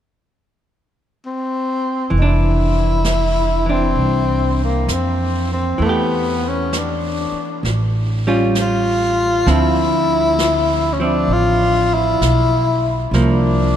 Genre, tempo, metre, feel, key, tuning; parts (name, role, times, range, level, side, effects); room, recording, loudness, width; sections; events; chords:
jazz ballad; 65 BPM; 4/4; swing 67% on 8ths; F major; A4 = 440 Hz
breathy tenor saxophone; melody; 1.3-13.8 s; Bb3 to F4; -18 LUFS; left 2 dB
archtop guitar, miked and amplified; accompaniment; 2.1-13.8 s; D3 to G4; -21 LUFS; right 1 dB
upright bass; bass; 2.1-13.8 s; F1 to F2; -19 LUFS; right 1 dB
jazz brush drum kit; drums; 2.1-13.8 s; brushed snare drum, hi-hat, snare drum; -29 LUFS; right 1 dB
wet cathedral reverb, RT60 5.0 s; in a vast, echoing space; -15 LUFS; side -10 dB against mid
0.0-2.1 A section; 2.1-13.8 B section
0.0 N.C.; 2.1 F5; 5.8 Em7; 7.6 Aaug7; 9.5 Dm9; 13.1 C9sus4